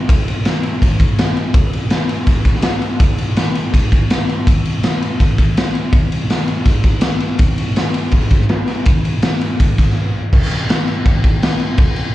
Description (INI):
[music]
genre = rock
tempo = 164 BPM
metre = 4/4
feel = straight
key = none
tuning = none
[part]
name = raw garage drum kit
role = drums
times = 0.1-12.0 s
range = crash cymbal, kick drum, ride cymbal, snare drum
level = -13 LUFS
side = equal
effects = none
[sound]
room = light reverb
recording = live gig heard through the venue's PA, cassette tape, club reverb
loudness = -13 LUFS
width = side -15 dB against mid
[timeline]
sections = 0.0-10.3 A section; 10.3-12.1 B section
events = break 10.0-10.3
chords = none